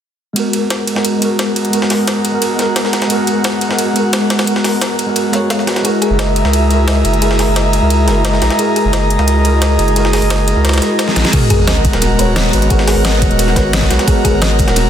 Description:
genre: liquid drum and bass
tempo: 175 BPM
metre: 4/4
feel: straight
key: G# minor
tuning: A4 = 439 Hz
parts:
  - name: mellow tine electric piano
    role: accompaniment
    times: 0.3-14.9 s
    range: G#3 to C#5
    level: -16 LUFS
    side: equal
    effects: phaser, ping-pong delay
  - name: airy breathy pad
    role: sustained chords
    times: 0.4-14.9 s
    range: G#3 to A#5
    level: -19 LUFS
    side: right 1 dB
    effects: chorus, sidechain pumping
  - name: jungle sampler-style drum kit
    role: drums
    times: 0.4-14.8 s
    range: hi-hat, ride cymbal, snare drum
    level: -20 LUFS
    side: right 1 dB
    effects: high-pass filter on cymbals, high-pass filter on snare, high-pass filter on hats
  - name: pop drum kit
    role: drums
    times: 0.4-14.8 s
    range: crash cymbal, hi-hat, shaker, snare drum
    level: -19 LUFS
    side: equal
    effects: overdrive
  - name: thumb-piano-like synth pluck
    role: arpeggios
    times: 5.8-14.5 s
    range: G#4 to D#5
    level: -21 LUFS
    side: equal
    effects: chorus, dub echo
  - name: saturated sub bass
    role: bass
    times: 6.1-14.9 s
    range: D#1 to C#2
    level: -14 LUFS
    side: equal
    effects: none
  - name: electronic kick drum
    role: drums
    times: 11.3-14.7 s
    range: none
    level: -15 LUFS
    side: equal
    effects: overdrive
  - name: sub drop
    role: sound effects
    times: 11.3-12.7 s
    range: none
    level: -18 LUFS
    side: equal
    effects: none
room: moderate concert hall reverb, RT60 2.0 s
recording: dense, heavily limited modern master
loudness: -11 LUFS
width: side -9 dB against mid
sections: 0.4-11.3 A section; 11.3-14.9 B section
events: filter sweep on analog synth pad 0.4-11.3; drum fill 11.1; drop 11.3-14.9; impact 11.3-12.7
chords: 0.4 G#m9; 5.8 F#9; 11.3 G#m9

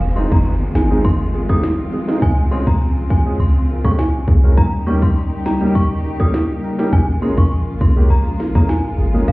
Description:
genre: dancehall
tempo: 102 BPM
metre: 4/4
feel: straight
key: unclear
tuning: A4 = 439 Hz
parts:
  - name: warm studio string section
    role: sustained chords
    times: 0.0-9.3 s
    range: Db3 to G4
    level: -23 LUFS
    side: left 1 dB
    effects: none
  - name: clean 808-style bass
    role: bass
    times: 0.0-9.3 s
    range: F1 to Eb2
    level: -17 LUFS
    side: equal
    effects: none
  - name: downlifter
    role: sound effects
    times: 0.0-4.6 s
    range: none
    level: -31 LUFS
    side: equal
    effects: none
  - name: synth chime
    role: melody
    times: 0.2-9.3 s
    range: F5 to Eb6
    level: -28 LUFS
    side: equal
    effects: ensemble chorus, digital delay
  - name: clear grand piano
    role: accompaniment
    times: 0.2-9.3 s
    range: G3 to Bb4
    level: -22 LUFS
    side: right 1 dB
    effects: sidechain pumping
  - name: island pop drum kit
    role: drums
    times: 0.2-9.3 s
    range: hi-hat, kick drum, rim click, snare drum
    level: -16 LUFS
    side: equal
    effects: overdrive
room: moderate small room reverb, RT60 0.6 s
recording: heard muffled through a wall, club reverb, EQ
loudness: -14 LUFS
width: side -21 dB against mid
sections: 0.0-9.3 A section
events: none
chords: 0.0 Fm7; 2.2 Dbmaj7; 4.6 Eb7; 6.9 Bbm7

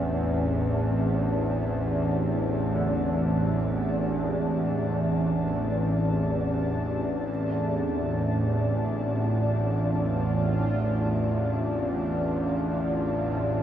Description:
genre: dark ambient drone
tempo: free time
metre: none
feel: none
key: A harmonic minor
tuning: A4 = 438 Hz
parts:
  - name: sweeping resonant pad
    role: sustained chords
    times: 0.0-13.6 s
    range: C4 to A5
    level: -31 LUFS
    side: equal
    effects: chorus, shimmer reverb
  - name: bright grand piano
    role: arpeggios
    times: 0.0-13.6 s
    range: D3 to G#3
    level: -39 LUFS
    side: right 1 dB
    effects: none
  - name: bowed-like drone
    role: drone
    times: 0.0-13.6 s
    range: A1 to E2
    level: -25 LUFS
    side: equal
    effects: built-in reverb
room: wet huge ambient reverb, RT60 8.3 s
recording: in a vast, echoing space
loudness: -24 LUFS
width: side -10 dB against mid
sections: 0.0-13.6 A section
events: fade-in on analog synth pad 0.0-13.6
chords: 0.0 Am; 7.3 F

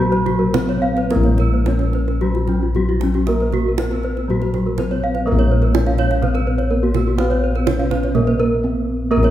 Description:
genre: Balinese gamelan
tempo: 106-125 BPM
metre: 4/4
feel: straight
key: Bb pelog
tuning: A4 = 439 Hz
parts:
  - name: gamelan-type bronze metallophone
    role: melody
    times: 0.0-9.3 s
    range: Gb3 to Db4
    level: -23 LUFS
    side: right 1 dB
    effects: none
  - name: gamelan-type bronze metallophone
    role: accompaniment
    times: 0.0-9.3 s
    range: Gb3 to Cb4+35c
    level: -26 LUFS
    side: equal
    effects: none
  - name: gamelan-type bronze metallophone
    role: arpeggios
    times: 0.0-9.2 s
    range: Db4 to F5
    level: -23 LUFS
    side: left 2 dB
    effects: none
  - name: gamelan-type bossed gongs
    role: bass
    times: 0.0-9.3 s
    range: Bb1 to Cb5+35c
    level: -19 LUFS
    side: left 1 dB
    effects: none
  - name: kendang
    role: percussion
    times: 0.1-9.3 s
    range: none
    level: -26 LUFS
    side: right 5 dB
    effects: none
  - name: gamelan-type bronze metallophone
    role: arpeggios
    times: 0.3-9.3 s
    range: Db4 to Db5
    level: -27 LUFS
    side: right 4 dB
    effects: none
room: wet recital hall reverb, RT60 1.8 s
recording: recorded in a church or concert hall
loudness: -15 LUFS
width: side -12 dB against mid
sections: 0.0-5.3 A section; 5.3-9.3 B section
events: break 8.4-9.1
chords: none

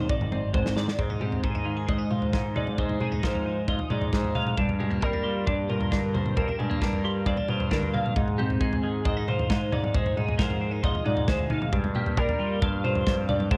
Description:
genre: math rock and midwest emo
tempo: 134 BPM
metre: 4/4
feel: straight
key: unclear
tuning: A4 = 441 Hz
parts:
  - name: twelve-string electric guitar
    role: accompaniment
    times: 0.0-13.6 s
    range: F2 to Bb4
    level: -33 LUFS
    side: equal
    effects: phaser
  - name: twelve-string electric guitar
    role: arpeggios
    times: 0.0-13.6 s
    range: G4 to F5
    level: -34 LUFS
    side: equal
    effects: analog chorus
  - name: growling picked electric bass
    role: bass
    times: 0.0-13.6 s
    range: Ab1 to G3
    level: -32 LUFS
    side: equal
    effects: overdrive
  - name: modern studio drum kit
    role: drums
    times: 0.1-13.6 s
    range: kick drum, snare drum, toms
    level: -30 LUFS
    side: equal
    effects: none
room: light reverb, studio reverb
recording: none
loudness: -26 LUFS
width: mono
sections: 1.0-13.6 A section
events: drum fill 0.0-1.0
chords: 0.0 Ab; 1.0 Abmaj7; 2.6 Fm7/Ab; 4.6 Gm7; 8.2 Abmaj7; 9.7 Fm7/Ab; 11.7 Gm7

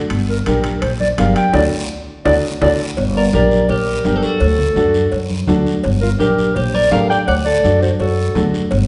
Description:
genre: latin, cumbia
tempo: 167 BPM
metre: 4/4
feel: straight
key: G harmonic minor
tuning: A4 = 441 Hz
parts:
  - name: upright bass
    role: bass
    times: 0.1-8.9 s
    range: G1 to F#2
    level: -21 LUFS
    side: equal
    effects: none
  - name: guiro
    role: percussion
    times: 0.1-8.9 s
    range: none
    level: -35 LUFS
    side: equal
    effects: none
  - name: timbales and cowbell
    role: percussion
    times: 0.1-8.9 s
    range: none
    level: -28 LUFS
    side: equal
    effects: none
  - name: dark clarinet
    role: melody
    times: 0.3-8.5 s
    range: A4 to G5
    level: -20 LUFS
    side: equal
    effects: none
  - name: clear upright piano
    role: accompaniment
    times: 0.5-8.6 s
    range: D4 to Bb4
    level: -24 LUFS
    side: equal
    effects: none
  - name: congas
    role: percussion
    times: 0.5-8.5 s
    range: none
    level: -24 LUFS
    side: equal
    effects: none
  - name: electric guitar at the edge of break-up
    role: second line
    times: 3.2-8.5 s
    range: F4 to D5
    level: -26 LUFS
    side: equal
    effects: none
room: wet recital hall reverb, RT60 1.4 s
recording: recorded in a church or concert hall, nothing above 10.8 kHz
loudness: -16 LUFS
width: mono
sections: 0.0-3.0 A section; 3.0-8.9 A section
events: band accent 1.5-3.0; drum fill 1.9-3.0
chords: 0.1 Gm; 1.5 D; 3.0 Gm; 4.4 D; 5.8 Gm; 7.3 D

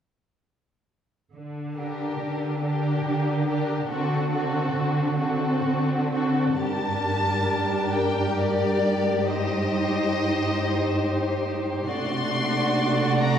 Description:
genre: classical, slow romantic movement for string orchestra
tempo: 68 BPM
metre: 3/4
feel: uneven beats, rubato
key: G minor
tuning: A4 = 441 Hz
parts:
  - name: clear studio cello section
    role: bass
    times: 1.3-13.4 s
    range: G2 to D3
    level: -27 LUFS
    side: right 1 dB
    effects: none
  - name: warm studio violin section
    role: melody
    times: 1.8-13.4 s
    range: A4 to C6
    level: -30 LUFS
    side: left 4 dB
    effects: none
  - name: rich studio violin section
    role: second line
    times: 1.8-13.4 s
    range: F#4 to D5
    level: -28 LUFS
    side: left 1 dB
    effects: none
  - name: rich studio viola section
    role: accompaniment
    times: 1.8-13.4 s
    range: G3 to Eb4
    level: -27 LUFS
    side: right 1 dB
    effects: none
room: wet scoring stage reverb, RT60 2.0 s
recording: heard from further back in the room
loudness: -22 LUFS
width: side -9 dB against mid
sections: 1.3-6.6 A section; 6.6-13.4 B section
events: none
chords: 1.3 Gm/D; 3.9 D7; 6.6 Gm; 9.3 Cm/G; 11.9 D7/C

